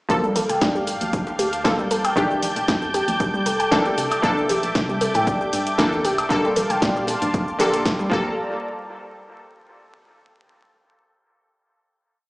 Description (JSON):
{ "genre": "deep house", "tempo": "116 BPM", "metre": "4/4", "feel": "swing 53% on 16ths", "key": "G minor", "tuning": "A4 = 441 Hz", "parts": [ { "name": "warm analog pad", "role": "sustained chords", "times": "0.1-8.4 s", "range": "D5 to D6", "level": "-28 LUFS", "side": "equal", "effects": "chorus, vintage 12-bit sampler grit, sidechain pumping" }, { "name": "warbly dusty pluck", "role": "arpeggios", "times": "0.1-8.4 s", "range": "G3 to G5", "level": "-24 LUFS", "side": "equal", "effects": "chorus, sidechain pumping, dub echo" }, { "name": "filtered dub chord stab", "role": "stabs", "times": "0.1-8.3 s", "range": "D3 to A4", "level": "-23 LUFS", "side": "equal", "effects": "chorus, sidechain pumping, dub echo" }, { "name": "organ-like FM bass", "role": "bass", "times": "0.1-8.4 s", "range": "Eb1 to C3", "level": "-32 LUFS", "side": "equal", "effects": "sidechain pumping" }, { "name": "electronic kick drum", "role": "drums", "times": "0.1-8.2 s", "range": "none", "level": "-26 LUFS", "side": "equal", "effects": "none" }, { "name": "punchy analog drum machine", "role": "drums", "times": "0.1-8.1 s", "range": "cabasa, hi-hat, snare drum, woodblock", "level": "-26 LUFS", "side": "equal", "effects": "none" }, { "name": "congas and bongos", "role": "percussion", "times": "0.1-8.1 s", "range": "none", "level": "-33 LUFS", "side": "equal", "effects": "none" }, { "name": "soft string machine", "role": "texture", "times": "0.1-8.4 s", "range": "G6", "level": "-32 LUFS", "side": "equal", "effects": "phaser, ensemble chorus" } ], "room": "moderate lush hall reverb, RT60 1.9 s", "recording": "played on a big sound system in a bare room, large studio reverb, vinyl crackle, small speaker sound", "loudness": "-18 LUFS", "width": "side -22 dB against mid", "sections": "0.1-8.4 drop; 8.4-10.4 final hit", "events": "drop 0.1-8.4", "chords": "0.1 Gm9; 2.2 F13; 4.0 C13; 6.3 Bbmaj7; 8.1 Gm9; 8.4 N.C." }